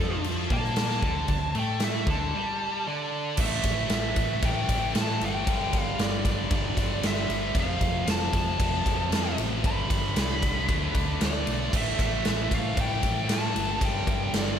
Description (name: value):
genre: hard rock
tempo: 115 BPM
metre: 4/4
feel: straight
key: A minor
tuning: A4 = 440 Hz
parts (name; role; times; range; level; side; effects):
- high-gain lead guitar; melody; 0.0-14.6 s; A4 to B5; -31 LUFS; equal; distortion, slapback echo
- distorted electric guitar; riff; 0.0-14.6 s; F2 to D4; -36 LUFS; right 1 dB; distortion, slapback echo
- heavy high-gain guitar; riff; 0.0-14.6 s; F2 to D4; -36 LUFS; right 10 dB; distortion
- high-gain distorted guitar; riff; 0.0-14.6 s; F2 to D4; -35 LUFS; left 9 dB; distortion, slapback echo
- hollow-body short-scale fingered electric bass; bass; 0.0-14.6 s; F1 to Bb2; -31 LUFS; equal; none
- big rock drum kit; drums; 0.2-14.5 s; crash cymbal, kick drum, ride cymbal, snare drum; -28 LUFS; equal; none
room: light reverb, studio reverb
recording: none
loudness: -24 LUFS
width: side -8 dB against mid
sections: 0.0-3.4 A section; 3.4-14.6 B section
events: lead electric guitar solo 0.0-3.4; break 2.3-3.4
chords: 0.0 D5; 3.4 A5; 5.5 G5; 7.6 F; 9.6 G; 10.7 D5; 11.7 A5; 13.8 G5